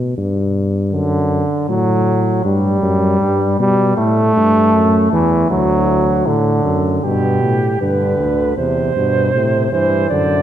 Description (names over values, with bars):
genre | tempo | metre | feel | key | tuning
classical, imitative canzona for brass ensemble | 78 BPM | 4/4 | straight | G major | A4 = 440 Hz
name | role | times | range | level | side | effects
warm tuba | bass | 0.0-10.4 s | D2 to B2 | -17 LUFS | left 1 dB | none
warm trombone | accompaniment | 0.9-10.4 s | B2 to A3 | -15 LUFS | right 1 dB | none
mellow flugelhorn | second line | 7.0-10.4 s | G4 to D5 | -17 LUFS | right 3 dB | none
room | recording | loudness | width
wet church reverb, RT60 2.9 s | dark, warm production | -13 LUFS | side -11 dB against mid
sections
0.0-7.0 A section; 7.0-10.4 B section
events
none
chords
0.0 G; 0.9 D/F#; 2.4 G; 4.0 A5; 5.5 D; 7.0 G; 8.6 C/E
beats
0.17 | 0.93 1.69 2.44 3.21 | 3.97 4.73 5.50 6.27 | 7.04 7.81 8.57 9.34 | 10.11